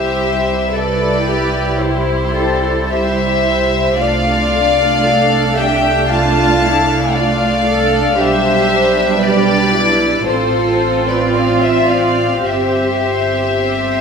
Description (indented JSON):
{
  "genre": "classical, slow romantic movement for string orchestra",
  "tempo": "52-59 BPM",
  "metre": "4/4",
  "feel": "rubato",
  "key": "C major",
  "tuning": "A4 = 440 Hz",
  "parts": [
    { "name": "warm symphonic violin section", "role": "melody", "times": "0.0-14.0 s", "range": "C5 to A5", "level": "-17 LUFS", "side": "left 4 dB", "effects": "none" },
    { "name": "warm symphonic violin section", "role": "second line", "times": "0.0-14.0 s", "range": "G4 to F5", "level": "-19 LUFS", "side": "left 1 dB", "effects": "none" },
    { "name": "dark symphonic viola section", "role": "accompaniment", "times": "0.0-14.0 s", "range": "G3 to G4", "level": "-18 LUFS", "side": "right 3 dB", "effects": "none" },
    { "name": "warm symphonic cello section", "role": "bass", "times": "0.0-14.0 s", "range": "E4 to A4", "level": "-20 LUFS", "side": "right 1 dB", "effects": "none" },
    { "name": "warm symphonic double bass section", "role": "bass", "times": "0.0-14.0 s", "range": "G1 to C2", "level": "-22 LUFS", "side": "right 2 dB", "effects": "none" }
  ],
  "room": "wet scoring stage reverb, RT60 1.7 s",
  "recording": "minimal, uncompressed stereo recording",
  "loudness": "-12 LUFS",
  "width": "side -6 dB against mid",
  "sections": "0.0-14.0 A section",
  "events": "none",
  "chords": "0.0 C; 4.0 Dm7/C; 8.2 G/B; 10.3 F/A; 12.4 C/G"
}